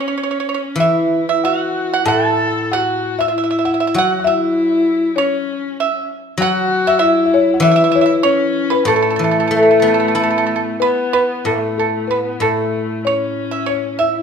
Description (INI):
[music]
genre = chinese traditional, Chinese chamber ensemble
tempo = 96 BPM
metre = 4/4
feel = rubato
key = A gong mode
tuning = A4 = 441 Hz
[part]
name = buzzing marimba with soft mallets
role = melody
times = 0.0-14.2 s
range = A4 to A5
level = -20 LUFS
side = left 6 dB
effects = none
[part]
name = clear horsehead fiddle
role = second line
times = 0.0-14.2 s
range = A3 to A4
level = -20 LUFS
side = left 2 dB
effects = none
[part]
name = pipa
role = second line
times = 0.0-14.2 s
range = A4 to A5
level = -19 LUFS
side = right 8 dB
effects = none
[part]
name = guzheng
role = accompaniment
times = 0.8-14.2 s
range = A2 to E4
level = -19 LUFS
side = left 1 dB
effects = none
[sound]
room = moderate recital hall reverb, RT60 1.8 s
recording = minimal, uncompressed stereo recording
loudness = -14 LUFS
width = side -6 dB against mid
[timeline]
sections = 0.0-11.5 A section; 11.5-14.2 B section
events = none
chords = none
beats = 0.15 0.79 | 1.44 2.08 2.72 3.34 | 3.96 4.57 5.18 5.79 | 6.40 7.01 7.62 8.24 | 8.86 9.50 10.14 10.80 | 11.46 12.11 12.74 13.37 | 13.99